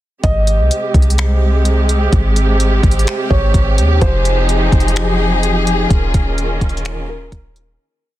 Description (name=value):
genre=hip hop, atmospheric cloud-rap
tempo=127 BPM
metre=4/4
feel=half-time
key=Ab major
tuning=A4 = 440 Hz
part: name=felt-muted upright piano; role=melody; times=0.2-7.8 s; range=Bb4 to Eb5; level=-23 LUFS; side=right 1 dB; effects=ping-pong delay
part: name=warm symphonic string section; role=sustained chords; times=0.2-7.8 s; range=C3 to Ab4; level=-18 LUFS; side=equal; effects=sidechain pumping
part: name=soft 808-style bass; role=bass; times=0.2-7.8 s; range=Eb1 to Eb2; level=-15 LUFS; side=equal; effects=none
part: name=smooth R&B drum kit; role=drums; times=0.2-7.7 s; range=finger snaps, hi-hat, kick drum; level=-16 LUFS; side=equal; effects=soft clipping on snare
room=studio reverb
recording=dense, heavily limited modern master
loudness=-12 LUFS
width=side -14 dB against mid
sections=0.2-7.8 verse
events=fade-out 5.9-7.8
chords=0.2 Abmaj7; 4.0 Fm7; 5.9 Eb7sus4